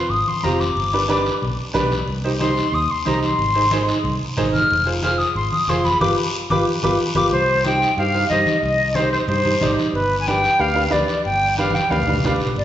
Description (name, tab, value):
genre	latin, cumbia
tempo	183 BPM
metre	4/4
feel	straight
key	C harmonic minor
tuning	A4 = 440 Hz
part	silver concert flute	melody	0.0-12.6 s	B4 to F6	-20 LUFS	left 1 dB	none
part	fingered electric bass	bass	0.1-12.6 s	F1 to G2	-25 LUFS	equal	none
part	guiro	percussion	0.1-12.6 s	none	-30 LUFS	left 2 dB	none
part	congas	percussion	0.3-12.6 s	none	-28 LUFS	equal	none
part	bright upright piano	accompaniment	0.4-12.5 s	C4 to D5	-22 LUFS	right 1 dB	none
room	wet recital hall reverb, RT60 1.4 s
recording	recorded in a church or concert hall, nothing above 7.9 kHz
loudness	-16 LUFS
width	side -11 dB against mid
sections	0.0-7.3 A section; 7.3-12.6 B section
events	flute solo 0.0-7.3; band accent 6.0-7.3; drum fill 11.6-12.6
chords	0.0 Fm; 0.8 G; 2.1 Cm; 3.4 Ab; 4.7 Fm; 6.0 G7; 7.3 Cm; 9.9 G7